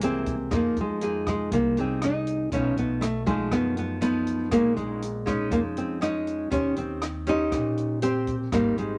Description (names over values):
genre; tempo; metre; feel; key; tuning
bossa nova; 120 BPM; 4/4; straight; F minor; A4 = 440 Hz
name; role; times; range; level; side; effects
nylon-string guitar; melody; 0.0-9.0 s; Ab3 to Eb4; -28 LUFS; equal; none
nylon-string guitar; accompaniment; 0.0-9.0 s; F#2 to C5; -32 LUFS; equal; none
warm grand piano; accompaniment; 0.0-0.5 s; E3 to Bb3; -37 LUFS; equal; none
upright bass; bass; 0.0-9.0 s; Ab1 to F#2; -36 LUFS; equal; none
compact cocktail drum kit; drums; 0.0-8.9 s; hi-hat, kick drum, rim click; -37 LUFS; equal; none
room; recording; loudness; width
light reverb; none; -26 LUFS; mono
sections
0.5-9.0 A section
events
none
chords
0.0 Caug7; 0.5 Fm7; 2.5 B7#11; 4.5 Bbm7; 6.5 Eb6